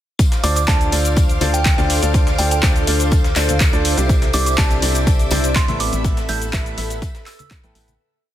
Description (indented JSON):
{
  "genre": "piano house",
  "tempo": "123 BPM",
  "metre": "4/4",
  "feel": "straight",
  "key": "D dorian",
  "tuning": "A4 = 440 Hz",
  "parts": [
    { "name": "string machine, violins", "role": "sustained chords", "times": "0.2-8.0 s", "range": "A4 to D6", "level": "-28 LUFS", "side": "equal", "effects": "ensemble chorus, sidechain pumping" },
    { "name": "dusty soul sampler-style drum kit", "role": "drums", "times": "0.2-7.9 s", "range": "hi-hat, snare drum", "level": "-31 LUFS", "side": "left 2 dB", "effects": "none" },
    { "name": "electronic kick drum", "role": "drums", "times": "0.2-7.6 s", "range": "none", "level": "-17 LUFS", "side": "equal", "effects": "none" },
    { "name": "punchy analog drum machine", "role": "drums", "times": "0.2-8.0 s", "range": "handclaps, hi-hat, shaker", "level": "-23 LUFS", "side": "equal", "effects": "overdrive" },
    { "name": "tambourine and congas", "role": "percussion", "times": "0.2-8.0 s", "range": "none", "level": "-30 LUFS", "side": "left 4 dB", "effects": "none" },
    { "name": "warbly tape-like pad", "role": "texture", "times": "1.0-8.0 s", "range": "C4 to F5", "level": "-28 LUFS", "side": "left 2 dB", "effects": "chorus, built-in reverb, phaser, sidechain pumping" },
    { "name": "glassy synth bell", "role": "melody", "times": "0.4-7.5 s", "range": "G5 to G6", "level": "-26 LUFS", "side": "right 4 dB", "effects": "chorus, dub echo" },
    { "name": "clear baby grand piano", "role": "riff", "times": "0.4-7.9 s", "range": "A2 to G5", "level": "-23 LUFS", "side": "equal", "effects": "sidechain pumping, dub echo" },
    { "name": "organ-like FM bass", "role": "bass", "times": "0.4-8.0 s", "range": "A1 to D2", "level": "-21 LUFS", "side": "equal", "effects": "sidechain pumping" }
  ],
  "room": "digital ambience",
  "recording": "dense, heavily limited modern master",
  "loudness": "-14 LUFS",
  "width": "side -12 dB against mid",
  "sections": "0.2-8.0 drop",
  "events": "drop 0.2-8.0; fade-out 5.4-8.0",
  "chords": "0.2 Dm7; 4.1 Cadd9; 5.8 Asus2",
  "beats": "| 0.19 0.68 1.17 1.66 | 2.14 2.63 3.12 3.61 | 4.09 4.58 5.07 5.56 | 6.04 6.53 7.02 7.51"
}